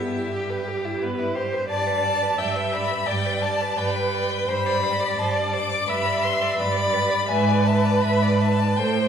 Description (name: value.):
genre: classical, slow romantic movement for string quartet.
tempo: 78-89 BPM.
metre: 4/4.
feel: rubato.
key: G major.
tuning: A4 = 442 Hz.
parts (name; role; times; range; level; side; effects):
rich violin; melody; 0.0-9.1 s; E5 to D6; -25 LUFS; left 4 dB; none.
warm violin; second line; 0.0-9.1 s; B3 to E5; -29 LUFS; left 2 dB; none.
rich viola; accompaniment; 0.0-9.1 s; G4 to E5; -25 LUFS; right 1 dB; none.
clear cello; bass; 0.0-9.1 s; G2 to A2; -26 LUFS; right 3 dB; none.
room: wet recital hall reverb, RT60 1.5 s.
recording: heard from further back in the room.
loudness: -20 LUFS.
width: side -8 dB against mid.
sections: 0.0-9.1 A section.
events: none.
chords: 0.0 Em/G; 1.7 G; 4.5 Gadd11; 5.9 G; 7.3 E7/G#.